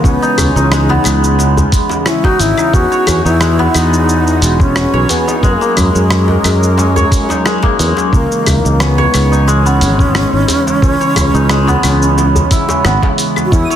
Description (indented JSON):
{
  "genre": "organic downtempo",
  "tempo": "89 BPM",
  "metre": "4/4",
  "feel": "swing 53% on 16ths",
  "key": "C# dorian",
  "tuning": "A4 = 438 Hz",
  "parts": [
    { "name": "breathy bright low ney", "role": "melody", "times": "0.0-13.8 s", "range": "G#3 to F#4", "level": "-17 LUFS", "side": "left 1 dB", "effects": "tape echo" },
    { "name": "warm analog pad", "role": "sustained chords", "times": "0.0-13.8 s", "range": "C#3 to A#4", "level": "-19 LUFS", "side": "right 2 dB", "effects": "chorus, vintage 12-bit sampler grit, sidechain pumping" },
    { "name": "santur", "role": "arpeggios", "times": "0.0-13.8 s", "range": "G#3 to C#5", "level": "-16 LUFS", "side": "left 1 dB", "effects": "digital delay" },
    { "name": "sustaining fretless electric bass", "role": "bass", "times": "0.0-13.6 s", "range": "E1 to F#2", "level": "-13 LUFS", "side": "equal", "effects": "sidechain pumping" },
    { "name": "electronic kick drum", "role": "drums", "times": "0.0-13.7 s", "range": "none", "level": "-13 LUFS", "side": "equal", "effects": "small room ambience" },
    { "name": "dusty soul sampler-style drum kit", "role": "drums", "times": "0.1-13.8 s", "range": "claves, hi-hat, rim click, shaker", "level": "-19 LUFS", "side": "equal", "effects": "small room ambience, soft clipping on snare" },
    { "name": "djembe", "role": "percussion", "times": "0.4-13.5 s", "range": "none", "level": "-21 LUFS", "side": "left 2 dB", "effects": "none" },
    { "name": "twinkling granular texture", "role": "texture", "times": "13.6-13.8 s", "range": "D#6", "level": "-24 LUFS", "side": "right 5 dB", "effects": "built-in reverb" }
  ],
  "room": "light reverb",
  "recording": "dense, heavily limited modern master",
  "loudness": "-9 LUFS",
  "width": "side -10 dB against mid",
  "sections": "0.0-13.8 A section",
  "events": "none",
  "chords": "0.0 C#madd9; 2.7 Emaj7; 5.4 F#; 8.1 C#madd9"
}